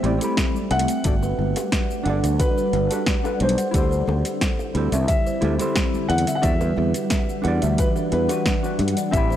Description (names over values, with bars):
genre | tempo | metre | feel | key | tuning
sunset chillout | 89 BPM | 4/4 | straight | unclear | A4 = 440 Hz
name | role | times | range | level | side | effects
dark baby grand piano | melody | 0.0-9.4 s | B4 to F#5 | -28 LUFS | left 1 dB | analog delay
hollow-body jazz guitar | accompaniment | 0.0-9.4 s | G3 to B5 | -29 LUFS | moving between left 6 dB and right 6 dB | auto-pan
ethereal airy pad | sustained chords | 0.0-9.4 s | D3 to F#5 | -27 LUFS | left 1 dB | ensemble chorus, built-in reverb
buzzing kalimba | arpeggios | 0.0-9.4 s | F#4 to G5 | -30 LUFS | right 3 dB | tape echo
sustaining fretless electric bass | bass | 0.0-9.4 s | G1 to G2 | -22 LUFS | equal | none
deep house drum kit | drums | 0.0-9.4 s | cabasa, hi-hat, snare drum | -27 LUFS | equal | overdrive, studio reverb
congas and bongos | percussion | 0.0-8.9 s | none | -33 LUFS | left 3 dB | none
electronic kick drum | drums | 0.4-9.3 s | none | -23 LUFS | equal | studio reverb
room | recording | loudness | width
light reverb | dry, gritty hardware recording | -19 LUFS | side -11 dB against mid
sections
0.0-9.4 A section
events
none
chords
0.0 Am7; 1.0 Gmaj7; 3.7 D9sus4; 6.1 Em9